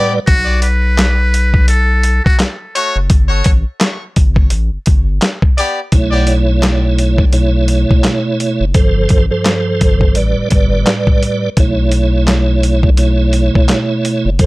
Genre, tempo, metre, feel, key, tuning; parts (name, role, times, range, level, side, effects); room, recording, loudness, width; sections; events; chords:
hip hop, boom-bap hip-hop; 85 BPM; 4/4; swing 57% on 16ths; B minor; A4 = 440 Hz
tonewheel organ; accompaniment; 0.0-0.2, 5.9-14.5 s; G2 to D5; -15 LUFS; right 2 dB; overdrive, chorus vibrato, fast rotary speaker, cassette tape, plate reverb
clear trumpet section; stabs; 0.0-5.8 s; A3 to D5; -19 LUFS; left 2 dB; plate reverb, digital delay
trumpet with metal mute; melody; 0.3-2.4 s; F#4 to B4; -17 LUFS; equal; digital delay
round analog bass; bass; 0.3-14.5 s; F#1 to B1; -14 LUFS; equal
dusty soul sampler-style drum kit; drums; 0.3-14.5 s; handclaps, hi-hat, kick drum, snare drum; -12 LUFS; equal
little or no reverb; -10 LUFS; side -21 dB against mid
0.0-5.9 A section; 5.9-14.5 B section
0.3 B5; 3.1 Gsus2; 4.5 Asus2; 5.9 B9sus4; 8.7 G9sus4; 10.2 A9sus4; 11.6 B9sus4